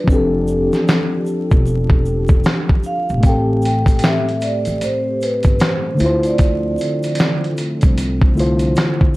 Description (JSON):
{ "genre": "lo-fi hip hop", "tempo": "76 BPM", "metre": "4/4", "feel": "swing 62% on 16ths", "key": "D minor", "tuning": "A4 = 441 Hz", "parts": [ { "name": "vibraphone with soft mallets", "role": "melody", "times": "0.0-7.4 s", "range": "A4 to G5", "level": "-22 LUFS", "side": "equal", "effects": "analog delay" }, { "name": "overdriven reed electric piano", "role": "accompaniment", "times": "0.0-9.2 s", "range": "A2 to D5", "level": "-20 LUFS", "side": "left 1 dB", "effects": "none" }, { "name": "dark analog pad", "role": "sustained chords", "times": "0.0-9.2 s", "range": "D3 to A4", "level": "-26 LUFS", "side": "equal", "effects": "chorus" }, { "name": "upright bass", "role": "bass", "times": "0.1-8.7 s", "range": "E1 to D2", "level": "-21 LUFS", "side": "equal", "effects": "none" }, { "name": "dusty soul sampler-style drum kit", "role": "drums", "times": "0.1-9.1 s", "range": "finger snaps, hi-hat, kick drum, snare drum", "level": "-15 LUFS", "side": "equal", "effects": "none" }, { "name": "tube shaker", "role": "percussion", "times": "0.1-9.2 s", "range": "none", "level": "-46 LUFS", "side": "right 3 dB", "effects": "none" } ], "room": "little or no reverb", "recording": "dry, gritty hardware recording, vinyl crackle", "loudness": "-14 LUFS", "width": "side -19 dB against mid", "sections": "0.0-9.2 A section", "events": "break 0.1-3.2", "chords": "0.1 F69; 3.2 Am7; 6.0 Dm7" }